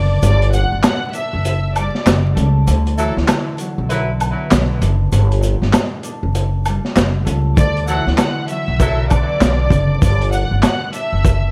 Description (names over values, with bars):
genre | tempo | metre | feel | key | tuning
hip hop, boom-bap hip-hop | 98 BPM | 4/4 | swing 61% on 16ths | unclear | A4 = 440 Hz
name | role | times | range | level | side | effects
warm symphonic violin section | melody | 0.0-2.0, 7.6-11.5 s | D5 to F#6 | -25 LUFS | equal | high-pass filter, low-pass filter, tape echo
concert harp | accompaniment | 0.0-11.5 s | G2 to D4 | -28 LUFS | equal | cassette tape, high-pass filter, low-pass filter
upright bass | bass | 0.0-11.5 s | F#1 to D2 | -19 LUFS | equal | none
crunchy breakbeat drum kit | drums | 0.2-11.4 s | handclaps, hi-hat, kick drum, snare drum | -20 LUFS | equal | vintage 12-bit sampler grit
egg shaker and woodblock | percussion | 0.2-11.4 s | none | -29 LUFS | equal | none
warm horn section | stabs | 3.0-4.1, 7.9-9.2 s | F#3 to B4 | -27 LUFS | equal | high-pass filter, low-pass filter, tape echo
room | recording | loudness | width
studio reverb | vinyl crackle | -16 LUFS | mono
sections
0.0-11.5 A section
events
break 0.0-7.6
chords
0.2 Gmadd9; 2.7 D69; 5.1 Gmadd9; 7.6 D69; 10.0 Gmadd9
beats
| 0.23 0.84 1.45 2.06 | 2.67 3.29 3.90 4.51 | 5.12 5.74 6.35 6.96 | 7.57 8.19 8.80 9.41 | 10.02 10.63 11.25